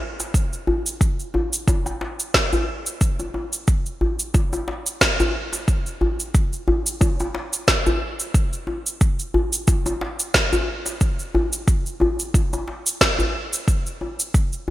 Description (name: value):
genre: downtempo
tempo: 90 BPM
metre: 4/4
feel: swing 55% on 16ths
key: none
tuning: none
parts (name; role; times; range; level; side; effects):
- electronic cabasa and snare drum; drums; 0.2-14.6 s; none; -22 LUFS; right 1 dB; studio reverb, gated reverb
- djembe; percussion; 0.2-14.7 s; none; -24 LUFS; left 1 dB; none
- electronic kick drum; drums; 0.3-14.5 s; none; -19 LUFS; equal; studio reverb
room: light reverb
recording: bright 1980s-style digital production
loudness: -19 LUFS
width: side -15 dB against mid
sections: 0.0-14.7 A section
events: none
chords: none